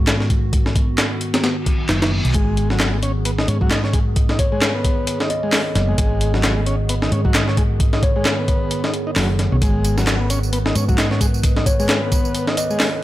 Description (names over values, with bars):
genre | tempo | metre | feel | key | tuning
breakbeat, breaks | 132 BPM | 4/4 | swing 57% on 16ths | G# minor | A4 = 440 Hz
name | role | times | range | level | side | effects
warbly tape-like pad | sustained chords | 0.0-13.0 s | D#3 to B4 | -27 LUFS | right 1 dB | chorus, built-in reverb, sidechain pumping
hollow-body short-scale fingered electric bass | bass | 0.0-13.0 s | F#1 to G#2 | -21 LUFS | equal | tube saturation
breakbeat sampler-style drum kit | drums | 0.1-12.9 s | hi-hat, kick drum, snare drum | -19 LUFS | equal | small room ambience
electronic handclaps and tambourine | drums | 0.1-12.9 s | none | -26 LUFS | right 1 dB | overdrive, small room ambience
reverse cymbal | sound effects | 1.6-2.3 s | none | -29 LUFS | left 1 dB | none
combo organ | riff | 2.3-12.9 s | F#3 to D#4 | -25 LUFS | equal | digital delay
kalimba | melody | 4.4-8.2, 11.7-13.0 s | C#5 to D#5 | -26 LUFS | left 1 dB | telephone sound, vintage 12-bit sampler grit, digital delay
room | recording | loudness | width
digital ambience | none | -16 LUFS | side -15 dB against mid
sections
0.0-13.0 A section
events
reverse cymbal 1.6-2.3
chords
0.0 G#m